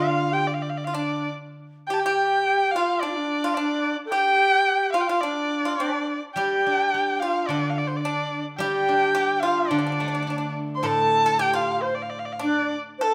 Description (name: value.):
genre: chinese traditional, Chinese chamber ensemble.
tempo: 108 BPM.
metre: 2/4.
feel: rubato.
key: D yu mode.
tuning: A4 = 440 Hz.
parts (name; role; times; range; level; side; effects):
warm erhu; melody; 0.0-13.1 s; C5 to C6; -26 LUFS; equal; none.
bright reedy xiao; second line; 0.0-13.1 s; D4 to C5; -29 LUFS; equal; none.
pipa; second line; 0.0-13.1 s; D4 to A4; -32 LUFS; equal; none.
steel-string zither; accompaniment; 0.0-1.3, 6.4-12.5 s; A2 to G4; -32 LUFS; equal; none.
room: moderate recital hall reverb, RT60 1.5 s.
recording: none.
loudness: -23 LUFS.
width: mono.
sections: 0.0-1.9 A section; 1.9-10.8 B section; 10.8-13.1 C section.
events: none.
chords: none.